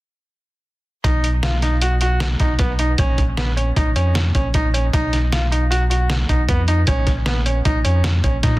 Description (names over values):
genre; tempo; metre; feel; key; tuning
progressive instrumental, band music in an uneven meter; 154 BPM; 5/4; straight; B lydian; A4 = 436 Hz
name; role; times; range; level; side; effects
bright baby grand piano; arpeggios; 1.0-8.5 s; B3 to F#4; -23 LUFS; right 1 dB; tape echo, plate reverb
sub bass with octave; bass; 1.0-8.6 s; A#1 to A#2; -18 LUFS; equal; none
trip hop sampler-style drum kit; drums; 1.0-8.6 s; hi-hat, kick drum, snare drum, toms; -20 LUFS; equal; none
room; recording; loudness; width
little or no reverb; dense, heavily limited modern master; -16 LUFS; side -19 dB against mid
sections
1.0-8.6 A section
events
drum fill 8.4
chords
1.0 B; 3.0 A#m; 4.9 B; 6.9 A#m